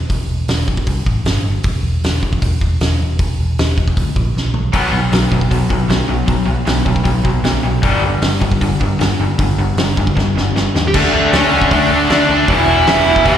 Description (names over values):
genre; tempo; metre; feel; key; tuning
punk rock; 155 BPM; 4/4; straight; unclear; A4 = 439 Hz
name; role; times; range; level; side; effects
picked electric bass; bass; 0.0-13.4 s; E1 to E2; -18 LUFS; equal; none
loose indie drum kit; drums; 0.1-13.3 s; crash cymbal, hi-hat, kick drum, snare drum, toms; -18 LUFS; equal; none
distorted electric guitar; riff; 4.7-13.4 s; E2 to D4; -21 LUFS; right 14 dB; distortion, slapback echo
raw garage guitar; riff; 4.7-13.4 s; E2 to D4; -16 LUFS; left 6 dB; overdrive, slapback echo
dark smooth lead guitar; melody; 10.9-13.4 s; A3 to G5; -15 LUFS; right 4 dB; overdrive
room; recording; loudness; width
little or no reverb; live gig heard through the venue's PA, recital hall reverb; -12 LUFS; side -10 dB against mid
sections
0.0-10.9 A section; 10.9-13.4 B section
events
drum fill 4.4-4.7, 10.2-10.9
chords
0.0 N.C.; 0.9 Am; 1.3 N.C.; 4.0 A#; 4.4 N.C.; 4.7 B5; 7.8 G5; 10.9 D5; 12.5 Em